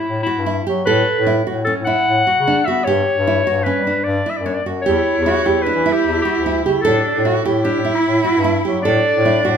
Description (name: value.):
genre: contemporary instrumental, chamber music in an uneven meter.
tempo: 150 BPM.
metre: 5/4.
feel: straight.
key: A mixolydian.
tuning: A4 = 440 Hz.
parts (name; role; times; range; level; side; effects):
bright clarinet; melody; 0.0-9.6 s; E4 to F#5; -18 LUFS; left 3 dB; none.
nylon-string guitar; arpeggios; 0.0-9.6 s; C#4 to A4; -20 LUFS; right 4 dB; none.
clear bass clarinet; bass; 0.1-9.6 s; D2 to B3; -21 LUFS; left 2 dB; none.
warm cello; second line; 4.9-9.6 s; D4 to F#4; -20 LUFS; right 5 dB; none.
room: moderate recital hall reverb, RT60 1.4 s.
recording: minimal, uncompressed stereo recording.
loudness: -14 LUFS.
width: side -7 dB against mid.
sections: 0.0-9.6 A section.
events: none.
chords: 0.0 A7(no3); 0.9 Dmaj7/A (rootless); 2.9 Gmaj7; 4.9 Em7; 6.9 A7sus4; 8.8 D/A.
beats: 0.07 0.47 | 0.87 1.27 1.67 2.07 2.47 | 2.87 3.27 3.66 4.06 4.46 | 4.86 5.26 5.66 6.06 6.46 | 6.85 7.25 7.65 8.05 8.45 | 8.85 9.25.